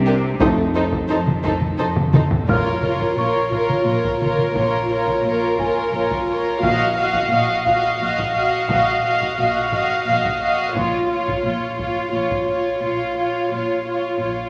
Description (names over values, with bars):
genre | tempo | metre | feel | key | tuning
cinematic, suspense film score | 87 BPM | 3/4 | straight | Bb minor | A4 = 440 Hz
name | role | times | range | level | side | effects
rich studio cello section | bass | 0.0-14.5 s | F2 to C3 | -30 LUFS | equal | none
warm symphonic double bass section | bass | 0.0-14.5 s | F1 to C2 | -34 LUFS | equal | none
warm symphonic violin section | melody | 0.1-14.5 s | Bb4 to Eb5 | -28 LUFS | equal | none
warm studio violin section | second line | 0.1-14.5 s | F4 to Bb4 | -27 LUFS | equal | none
warm chamber viola section | accompaniment | 0.1-14.5 s | D4 to F5 | -24 LUFS | equal | none
clear trombone section | sustained chords | 0.4-0.7 s | none | barely audible | none | none
warm French horn section | sustained chords | 0.4-0.7 s | A3 to Eb4 | -28 LUFS | equal | none
taiko ensemble | drums | 0.4-13.0 s | none | -25 LUFS | equal | none
timpani | percussion | 2.5-3.5, 6.6-7.6 s | Bb2 | -32 LUFS | equal | none
worn celesta | texture | 2.5-14.5 s | F4 to F6 | -30 LUFS | equal | none
room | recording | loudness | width
wet scoring stage reverb, RT60 1.5 s | none | -20 LUFS | mono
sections
0.0-2.5 A section; 2.5-14.5 B section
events
drum fill 2.0-2.5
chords
0.4 F7(no3); 2.5 Bbm